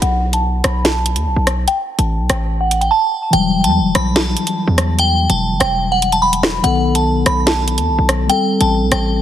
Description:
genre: hip hop, drill.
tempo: 145 BPM.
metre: 4/4.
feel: half-time.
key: E harmonic minor.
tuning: A4 = 440 Hz.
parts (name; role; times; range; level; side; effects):
glassy synth bell; melody; 0.0-9.2 s; F#5 to B5; -17 LUFS; equal; chorus, phaser, low-pass filter, tape echo.
hard-hitting 808-style bass; bass; 0.0-9.2 s; E1 to E2; -18 LUFS; equal; none.
drill drum kit; drums; 0.0-9.0 s; hi-hat, rim click, snare drum; -19 LUFS; equal; none.
mellow tine electric piano; accompaniment; 3.3-9.2 s; D#3 to A4; -19 LUFS; left 2 dB; slow stereo tremolo, low-pass filter.
room: light reverb, digital ambience.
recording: heavily compressed radio sound.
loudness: -13 LUFS.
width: side -10 dB against mid.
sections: 0.0-9.2 A section.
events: filter sweep 0.0-3.3; silent gap 2.9-3.3.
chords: 0.0 B7(no3); 1.7 Gsus2/A; 3.3 Emadd9; 6.6 B7; 8.3 Am7.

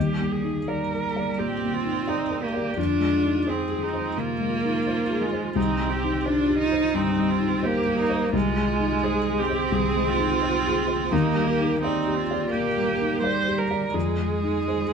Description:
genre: neoclassical piano and strings.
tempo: 86 BPM.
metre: 4/4.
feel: rubato.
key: unclear.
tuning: A4 = 440 Hz.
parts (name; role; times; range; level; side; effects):
rich cello; second line; 0.0-14.9 s; G3 to Eb4; -25 LUFS; right 4 dB; none.
felt-muted upright piano; accompaniment; 0.0-14.9 s; C2 to D5; -26 LUFS; left 3 dB; none.
warm viola; accompaniment; 0.0-14.9 s; Eb4 to C5; -29 LUFS; right 3 dB; none.
room: wet stone room reverb, RT60 1.1 s.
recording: band playing live in one room.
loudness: -22 LUFS.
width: side -6 dB against mid.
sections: 0.0-14.9 A section.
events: none.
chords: 0.0 Ebmaj7; 2.8 Fm7; 5.6 Cm; 8.3 Ab6/C; 11.1 Ebmaj7; 13.9 Fm7.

